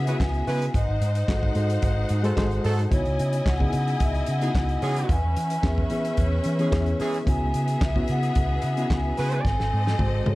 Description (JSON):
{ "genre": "disco", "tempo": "110 BPM", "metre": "4/4", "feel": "straight", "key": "C# minor", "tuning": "A4 = 437 Hz", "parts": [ { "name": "vibraphone with soft mallets", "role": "melody", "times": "0.0-10.3 s", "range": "B#4 to G#5", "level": "-31 LUFS", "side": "left 1 dB", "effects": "tape echo" }, { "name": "rich studio string section", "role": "second line", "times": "0.0-10.3 s", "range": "B3 to G#5", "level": "-32 LUFS", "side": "left 1 dB", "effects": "none" }, { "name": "reed electric piano", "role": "accompaniment", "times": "0.0-10.3 s", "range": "C#3 to B#4", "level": "-29 LUFS", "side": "left 1 dB", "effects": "fast tremolo" }, { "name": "picked electric bass with an envelope filter", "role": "bass", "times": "0.0-10.3 s", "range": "G#1 to E3", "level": "-25 LUFS", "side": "equal", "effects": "none" }, { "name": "warm horn section", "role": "stabs", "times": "0.1-9.4 s", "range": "E3 to B4", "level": "-32 LUFS", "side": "right 2 dB", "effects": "none" }, { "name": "warm soul drum kit", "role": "drums", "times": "0.1-10.3 s", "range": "handclaps, hi-hat, kick drum, snare drum, toms", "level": "-27 LUFS", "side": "equal", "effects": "none" } ], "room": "studio ambience", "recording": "dark, warm production", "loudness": "-21 LUFS", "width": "side -19 dB against mid", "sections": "0.0-10.3 A section", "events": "drum fill 9.4-10.3", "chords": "0.0 C#m7; 0.7 G#7b9; 2.9 C#m11; 5.1 E6; 7.3 C#m11; 9.4 G#7b9" }